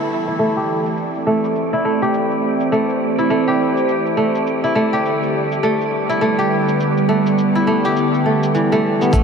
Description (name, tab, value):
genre	organic downtempo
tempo	103 BPM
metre	4/4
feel	swing 60% on 16ths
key	unclear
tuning	A4 = 438 Hz
part	warbly tape-like pad	sustained chords	0.0-9.2 s	D3 to C5	-19 LUFS	right 1 dB	chorus, built-in reverb, phaser, sidechain pumping
part	kora	arpeggios	0.0-9.2 s	E3 to G4	-18 LUFS	equal	low-pass filter, tape echo
part	wind-like tuned noise texture	texture	0.5-9.1 s	D5	-29 LUFS	right 5 dB	built-in reverb
part	shaker	drums	0.3-9.2 s	none	-40 LUFS	left 1 dB	overdrive, low-pass filter on perc, low-pass filter on snare
part	smooth gliding synth bass	bass	9.1-9.2 s	A1	-18 LUFS	equal	sidechain pumping
part	electronic kick drum	drums	9.1-9.2 s	none	-14 LUFS	equal	overdrive
room	wet huge ambient reverb, RT60 8.5 s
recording	dreamy mix soaked in reverb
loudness	-15 LUFS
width	side -6 dB against mid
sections	0.0-9.1 A section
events	filter sweep on kora 0.0-9.1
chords	0.0 Am7; 4.5 G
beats	0.39 0.97 1.56 | 2.14 2.72 3.30 3.89 | 4.47 5.05 5.63 6.22 | 6.80 7.38 7.96 8.55 | 9.13